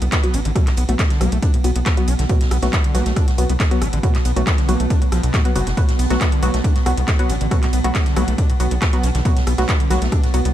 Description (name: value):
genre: driving peak-time techno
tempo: 138 BPM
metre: 4/4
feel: straight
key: B minor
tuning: A4 = 441 Hz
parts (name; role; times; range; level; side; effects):
- screaming distorted acid line; riff; 0.0-10.5 s; A2 to D4; -27 LUFS; equal; distortion, analog chorus, sidechain pumping, ping-pong delay
- filtered dub chord stab; stabs; 0.0-10.5 s; F#3 to F#4; -25 LUFS; left 1 dB; chorus, sidechain pumping, ping-pong delay
- tight sequencer bass; bass; 0.0-10.5 s; F#1 to C2; -19 LUFS; equal; tube saturation, sidechain pumping
- metallic inharmonic drone; drone; 0.0-10.5 s; B2 to B3; -28 LUFS; right 2 dB; chorus, built-in reverb, sidechain pumping
- techno drum kit; drums; 0.0-10.5 s; handclaps, hi-hat, ride cymbal, rim click; -26 LUFS; equal; sidechain pumping on hats, small room reverb, sidechain pumping on cymbals
- electronic kick drum; drums; 0.1-10.2 s; none; -18 LUFS; equal; small room reverb
- swinging big-band drum kit; drums; 0.1-10.4 s; hi-hat, snare drum; -34 LUFS; right 1 dB; sidechain pumping on hats, high-pass filter on hats, small room reverb, high-pass filter on snare, high-pass filter on room
room: little or no reverb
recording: dark, warm production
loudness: -15 LUFS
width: side -12 dB against mid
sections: 0.0-10.5 A section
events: none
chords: 0.0 B5